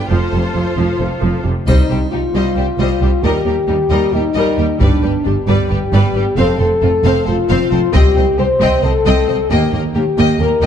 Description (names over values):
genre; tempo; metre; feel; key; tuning
cinematic, epic orchestral film score; 268 BPM (eighths); 7/8; straight; C dorian; A4 = 440 Hz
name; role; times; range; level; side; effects
bright symphonic violin section; melody; 0.0-10.7 s; G4 to G5; -28 LUFS; left 4 dB; none
rich symphonic violin section; second line; 0.0-10.7 s; D4 to Eb5; -24 LUFS; left 2 dB; none
rich symphonic viola section; accompaniment; 0.0-10.7 s; C3 to F4; -21 LUFS; right 1 dB; none
clear symphonic double bass section; bass; 0.1-10.7 s; F1 to Eb2; -18 LUFS; right 2 dB; none
warm symphonic cello section; bass; 0.1-10.7 s; C2 to G2; -20 LUFS; right 2 dB; none
warm French horn section; sustained chords; 1.7-10.7 s; D4 to C5; -16 LUFS; left 4 dB; none
taiko ensemble; drums; 1.7-8.8 s; none; -16 LUFS; left 1 dB; none
triangle; percussion; 1.7-2.5 s; none; -40 LUFS; left 2 dB; none
room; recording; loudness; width
moderate scoring stage reverb, RT60 1.5 s; dark, warm production; -12 LUFS; side -8 dB against mid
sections
0.0-1.7 A section; 1.7-10.7 A section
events
none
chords
0.1 F; 1.7 Cm; 3.2 Eb; 4.8 G; 6.4 F; 7.9 Cm; 9.5 Eb